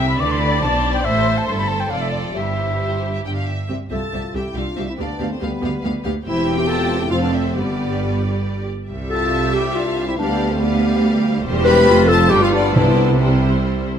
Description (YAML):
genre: quick classical-period movement for symphony orchestra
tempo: 131-144 BPM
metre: 3/4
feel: rubato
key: C major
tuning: A4 = 441 Hz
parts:
  - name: rich studio violin section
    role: melody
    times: 0.0-13.9 s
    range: B4 to G5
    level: -30 LUFS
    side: left 2 dB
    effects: none
  - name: concert flute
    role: second line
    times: 0.0-3.2 s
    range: D5 to D6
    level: -23 LUFS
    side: left 2 dB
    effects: none
  - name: rich studio violin section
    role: second line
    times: 0.0-13.7 s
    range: D4 to B5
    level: -28 LUFS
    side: left 1 dB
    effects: none
  - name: warm studio viola section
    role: accompaniment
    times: 0.0-13.9 s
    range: G3 to E5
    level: -24 LUFS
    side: right 1 dB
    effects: none
  - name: rich studio cello section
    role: bass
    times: 0.0-13.9 s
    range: C2 to D3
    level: -23 LUFS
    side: right 2 dB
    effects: none
  - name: rich studio double bass section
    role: bass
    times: 0.0-13.9 s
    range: E1 to D2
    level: -23 LUFS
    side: right 3 dB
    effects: none
  - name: timpani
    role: percussion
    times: 0.0-0.4, 12.8-13.4 s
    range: C3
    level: -23 LUFS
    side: right 1 dB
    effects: none
  - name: mellow clarinet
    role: second line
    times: 3.9-13.7 s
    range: B3 to B4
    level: -21 LUFS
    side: left 2 dB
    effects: none
  - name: mellow French horn section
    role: sustained chords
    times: 3.9-13.7 s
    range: G3 to G4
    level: -25 LUFS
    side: left 4 dB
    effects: none
room: moderate recital hall reverb, RT60 1.6 s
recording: none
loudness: -16 LUFS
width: side -8 dB against mid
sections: 0.0-3.7 A section; 3.7-14.0 B section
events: none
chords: 0.0 C; 1.0 Am; 1.9 Dm/F; 2.3 C/G; 3.7 C; 5.0 G7/D; 6.3 C/E; 7.1 F; 7.6 G; 8.9 C; 10.2 G7/D; 11.5 C/E; 11.9 F; 12.3 G7; 12.8 C